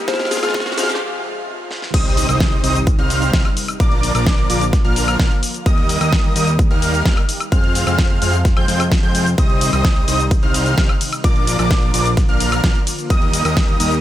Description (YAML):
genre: EDM, festival progressive house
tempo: 129 BPM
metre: 4/4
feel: straight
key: C minor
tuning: A4 = 444 Hz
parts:
  - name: soft synth bell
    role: melody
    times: 0.0-1.0 s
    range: Ab4 to C5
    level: -26 LUFS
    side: left 1 dB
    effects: chorus, digital delay
  - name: lush unison pad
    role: sustained chords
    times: 0.0-14.0 s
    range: C3 to G4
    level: -28 LUFS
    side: equal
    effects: chorus, phaser, sidechain pumping
  - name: riser and impact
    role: sound effects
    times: 0.0-3.8 s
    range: none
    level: -28 LUFS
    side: equal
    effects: none
  - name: dark grand piano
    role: accompaniment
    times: 0.1-1.0 s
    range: Ab3 to Ab4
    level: -32 LUFS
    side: left 3 dB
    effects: none
  - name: wide unison lead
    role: arpeggios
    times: 0.1-13.9 s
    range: D6 to G6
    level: -24 LUFS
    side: equal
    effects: analog chorus, sidechain pumping, digital delay
  - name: big supersaw lead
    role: riff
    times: 0.1-13.9 s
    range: F3 to G5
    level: -23 LUFS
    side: equal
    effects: sidechain pumping, digital delay
  - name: fat analog bass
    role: bass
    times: 0.1-14.0 s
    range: Bb1 to F2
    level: -21 LUFS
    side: equal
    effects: sidechain pumping, high-pass filter
  - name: big-room dance drum kit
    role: drums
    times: 0.1-14.0 s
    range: cabasa, crash cymbal, hi-hat, ride cymbal, snare drum, woodblock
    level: -23 LUFS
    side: left 1 dB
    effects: none
  - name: electronic kick drum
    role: drums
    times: 0.1-13.7 s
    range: none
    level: -16 LUFS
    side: equal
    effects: none
room: digital ambience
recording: high-pass filter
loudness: -14 LUFS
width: side -13 dB against mid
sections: 0.0-1.9 A section; 1.9-14.0 B section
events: build-up 0.0-1.9; drum fill 0.0-1.0, 1.7; riser 0.0-1.0; filter sweep on analog synth pad 0.0-1.9; break 1.0-1.9; drop 1.9-14.0; impact 1.9-3.8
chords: 0.1 Fm; 1.9 Cm; 3.8 Bb; 5.7 Eb; 7.5 Fm; 9.4 Cm; 11.2 Bb; 13.1 Eb